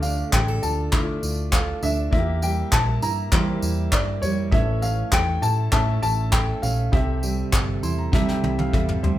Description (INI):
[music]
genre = acoustic pop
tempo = 100 BPM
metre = 4/4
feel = straight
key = D minor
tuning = A4 = 440 Hz
[part]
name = felt-muted upright piano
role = melody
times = 0.0-8.7 s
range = C#5 to Bb5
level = -27 LUFS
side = left 1 dB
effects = none
[part]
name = clear upright piano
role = accompaniment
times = 0.0-9.2 s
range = E3 to C6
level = -30 LUFS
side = left 3 dB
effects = none
[part]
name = fingerpicked steel-string acoustic guitar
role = accompaniment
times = 0.0-9.2 s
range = A2 to Bb4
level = -28 LUFS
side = right 4 dB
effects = none
[part]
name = vintage muted fingered electric bass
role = bass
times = 0.0-9.2 s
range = G1 to E3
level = -25 LUFS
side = equal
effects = none
[part]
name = soft brush drum kit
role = drums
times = 0.0-9.2 s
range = handclaps, kick drum, snare drum, tambourine, toms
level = -23 LUFS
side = equal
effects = none
[sound]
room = moderate large studio reverb, RT60 0.9 s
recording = band playing live in one room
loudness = -20 LUFS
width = side -14 dB against mid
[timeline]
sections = 0.0-9.2 A section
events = upright piano fill 7.5-9.2; drum fill 8.1-9.2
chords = 0.0 Dm; 2.1 Edim; 4.5 A; 6.9 C6